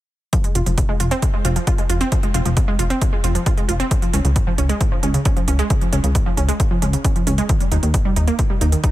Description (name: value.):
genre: uplifting trance.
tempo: 134 BPM.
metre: 4/4.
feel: straight.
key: F minor.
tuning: A4 = 440 Hz.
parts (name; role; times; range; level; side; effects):
wide unison pluck; arpeggios; 0.3-8.9 s; Ab2 to F4; -22 LUFS; right 2 dB; sidechain pumping, digital delay.
electronic hi-hat; drums; 0.3-8.9 s; none; -28 LUFS; right 5 dB; sidechain pumping on hats.
electronic kick drum; drums; 0.3-8.9 s; none; -19 LUFS; equal; none.
plucky analog bass; bass; 0.6-8.7 s; F1 to Eb2; -19 LUFS; equal; sidechain pumping.
room: digital ambience.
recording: none.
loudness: -16 LUFS.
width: side -15 dB against mid.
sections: 0.3-8.9 A section.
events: none.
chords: 0.3 Fm; 3.9 Db; 7.5 Eb.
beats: | 0.33 0.78 1.22 1.67 | 2.12 2.57 3.02 3.46 | 3.91 4.36 4.81 5.25 | 5.70 6.15 6.60 7.04 | 7.49 7.94 8.39 8.84.